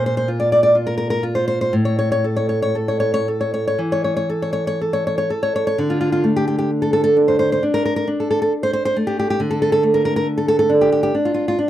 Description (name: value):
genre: romantic piece for solo classical guitar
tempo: 58-69 BPM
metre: 4/4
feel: rubato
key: D minor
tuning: A4 = 440 Hz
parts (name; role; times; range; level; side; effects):
- nylon-string guitar; solo; 0.0-11.7 s; A2 to D5; -16 LUFS; equal; none
room: light reverb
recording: dry, close 1970s-style studio recording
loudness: -16 LUFS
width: side -12 dB against mid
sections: 0.0-5.8 A section; 5.8-11.7 B section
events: none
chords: 0.0 Bb5; 1.7 A5; 5.8 D5